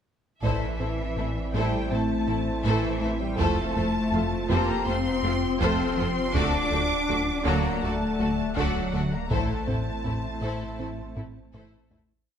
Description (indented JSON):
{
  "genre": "cinematic, hybrid orchestral and electronic film score",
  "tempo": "81 BPM",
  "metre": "4/4",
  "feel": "straight",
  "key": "A phrygian",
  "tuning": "A4 = 439 Hz",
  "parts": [
    { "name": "rich symphonic violin section", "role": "melody", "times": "0.4-11.5 s", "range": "E5 to D6", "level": "-34 LUFS", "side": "left 1 dB", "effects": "none" },
    { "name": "rich symphonic violin section", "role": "second line", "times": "0.4-12.0 s", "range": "E4 to D5", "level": "-33 LUFS", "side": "left 4 dB", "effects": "none" },
    { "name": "rich symphonic viola section", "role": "accompaniment", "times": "0.4-12.0 s", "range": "F#3 to F#4", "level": "-33 LUFS", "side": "right 2 dB", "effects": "none" },
    { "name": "analog drone", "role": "sustained chords", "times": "1.0-12.3 s", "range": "C4 to F#5", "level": "-35 LUFS", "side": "right 2 dB", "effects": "chorus" },
    { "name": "mellow French horn section", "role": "sustained chords", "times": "0.4-11.5 s", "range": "E3 to D4", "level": "-33 LUFS", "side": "left 5 dB", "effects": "none" },
    { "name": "tight sequenced synth", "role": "arpeggios", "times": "0.4-12.1 s", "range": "D3 to E4", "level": "-37 LUFS", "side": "right 3 dB", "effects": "chorus" },
    { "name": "round analog bass", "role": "riff", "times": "0.4-12.1 s", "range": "D2 to A3", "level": "-32 LUFS", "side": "left 2 dB", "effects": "none" },
    { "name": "dark symphonic double bass section", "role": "bass", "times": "0.4-12.0 s", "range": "A1 to F2", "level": "-33 LUFS", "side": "right 5 dB", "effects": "none" },
    { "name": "rich symphonic cello section", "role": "bass", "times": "0.4-11.5 s", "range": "E3 to D4", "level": "-31 LUFS", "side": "equal", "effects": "none" },
    { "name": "sub bass with octave", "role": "bass", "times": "0.4-12.3 s", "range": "D1 to A1", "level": "-36 LUFS", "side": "equal", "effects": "none" },
    { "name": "solo taiko drums", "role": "drums", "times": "0.4-12.3 s", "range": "none", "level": "-33 LUFS", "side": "right 1 dB", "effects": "none" },
    { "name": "clear grand piano", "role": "texture", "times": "0.4-12.3 s", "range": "C4 to D5", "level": "-42 LUFS", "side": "left 2 dB", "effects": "none" }
  ],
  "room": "moderate scoring stage reverb, RT60 1.4 s",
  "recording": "none",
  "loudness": "-24 LUFS",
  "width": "side -8 dB against mid",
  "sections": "0.4-12.3 theme",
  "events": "fade-out 9.3-12.3; drum fill 11.2-12.3",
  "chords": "0.4 Am; 3.4 F; 6.4 D; 9.3 Am"
}